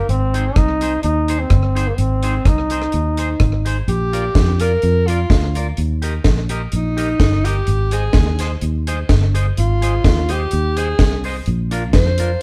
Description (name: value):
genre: ska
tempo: 126 BPM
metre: 4/4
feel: straight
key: unclear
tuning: A4 = 438 Hz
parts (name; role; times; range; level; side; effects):
- clear trombone; melody; 0.0-3.7 s; Bb3 to Eb4; -23 LUFS; equal; none
- fingered electric bass; bass; 0.1-12.3 s; G1 to F2; -21 LUFS; equal; none
- deep reggae drum kit; drums; 0.1-12.3 s; hi-hat, kick drum, rim click, snare drum; -19 LUFS; equal; slapback echo
- clean electric guitar; accompaniment; 0.3-12.3 s; D4 to Eb5; -30 LUFS; equal; slapback echo
- clear alto saxophone; melody; 3.9-12.4 s; Eb4 to C5; -23 LUFS; equal; none
room: moderate studio reverb, RT60 0.9 s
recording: band playing live in one room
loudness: -17 LUFS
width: mono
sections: 0.0-3.9 A section; 3.9-12.4 B section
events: alto saxophone solo 3.9-12.4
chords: 0.1 Ab; 3.9 Bb; 5.8 Eb; 7.7 Ab; 11.5 Bb